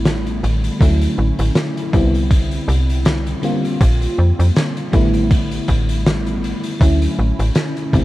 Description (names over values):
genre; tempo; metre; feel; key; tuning
vaporwave; 80 BPM; 4/4; swing 55% on 16ths; D major; A4 = 441 Hz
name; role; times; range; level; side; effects
FM electric piano with soft pad layer; accompaniment; 0.0-8.0 s; D3 to F4; -20 LUFS; left 1 dB; lush chorus, cassette tape, analog delay
slap-like FM bass; bass; 0.0-8.0 s; A1 to F2; -17 LUFS; equal; tube saturation
oversized low-tuned drum kit; drums; 0.1-8.0 s; hi-hat, snare drum; -22 LUFS; equal; none
electronic kick drum; drums; 0.8-8.0 s; none; -15 LUFS; equal; overdrive
room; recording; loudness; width
studio ambience; cassette tape; -14 LUFS; side -16 dB against mid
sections
0.0-8.0 A section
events
none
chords
0.0 A9sus4; 0.8 Dmaj9; 1.9 Cmaj9; 3.4 Bb69; 4.9 A9sus4; 6.8 Dmaj9